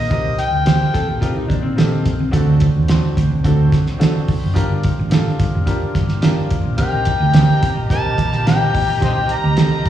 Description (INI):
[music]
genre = uptempo 1960s-style soul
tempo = 108 BPM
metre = 4/4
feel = straight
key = C dorian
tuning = A4 = 440 Hz
[part]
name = overdriven harmonica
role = melody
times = 0.0-1.2, 6.8-9.9 s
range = C5 to Bb5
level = -20 LUFS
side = left 3 dB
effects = slapback echo
[part]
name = overdriven tonewheel organ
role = sustained chords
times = 0.0-9.9 s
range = D3 to C4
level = -30 LUFS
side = equal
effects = slow rotary speaker
[part]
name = hollow-body short-scale fingered electric bass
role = bass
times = 0.0-9.9 s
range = F1 to Eb2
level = -18 LUFS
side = right 1 dB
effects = none
[part]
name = warm upright piano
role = accompaniment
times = 0.1-9.9 s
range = C4 to C5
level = -26 LUFS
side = left 1 dB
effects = slapback echo
[part]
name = cloth-damped thuddy drum kit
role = drums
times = 0.1-9.9 s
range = hi-hat, kick drum, snare drum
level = -17 LUFS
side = right 1 dB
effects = slapback echo
[part]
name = electric guitar through a small old amp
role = riff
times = 0.9-2.3 s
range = C4 to A4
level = -25 LUFS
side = left 6 dB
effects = slapback echo
[part]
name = warm studio string section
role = second line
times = 6.8-9.9 s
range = G4 to Bb5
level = -26 LUFS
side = right 2 dB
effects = slapback echo
[sound]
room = light reverb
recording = live gig heard through the venue's PA, recital hall reverb, vinyl crackle, studio ambience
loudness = -14 LUFS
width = side -11 dB against mid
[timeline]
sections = 0.0-9.9 A section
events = none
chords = 0.0 Cm7; 2.3 D7; 4.6 Gm7; 6.8 Cm7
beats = | 0.11 0.67 1.22 1.78 | 2.34 2.90 3.45 4.01 | 4.57 5.12 5.68 6.24 | 6.79 7.35 7.91 8.46 | 9.02 9.58